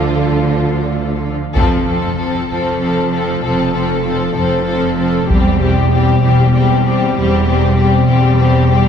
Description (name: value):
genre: cinematic, epic orchestral film score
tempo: 64 BPM (dotted quarters)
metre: 6/8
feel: straight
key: unclear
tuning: A4 = 440 Hz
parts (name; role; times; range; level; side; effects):
- rich studio violin section; melody; 0.0-8.9 s; G4 to A4; -20 LUFS; left 6 dB; none
- rich symphonic violin section; second line; 0.0-8.9 s; C4 to F4; -21 LUFS; left 3 dB; none
- clear symphonic viola section; accompaniment; 0.0-8.9 s; F3 to G3; -20 LUFS; right 1 dB; none
- mellow French horn section; sustained chords; 0.0-1.2 s; A3 to F4; -25 LUFS; left 1 dB; none
- rich symphonic cello section; bass; 0.0-8.9 s; E2 to D3; -19 LUFS; right 2 dB; none
- rich symphonic double bass section; bass; 0.0-8.9 s; E1 to D2; -17 LUFS; equal; none
- warm tuba; bass; 0.0-1.4 s; D2; -21 LUFS; right 4 dB; none
- solo taiko drums; drums; 1.6-6.5 s; none; -19 LUFS; equal; none
room: wet concert hall reverb, RT60 2.1 s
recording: heard from further back in the room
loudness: -12 LUFS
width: side -8 dB against mid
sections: 0.0-1.6 A section; 1.6-8.9 B section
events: band accent 1.6-2.2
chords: 0.0 Dm; 1.6 F; 5.3 C/E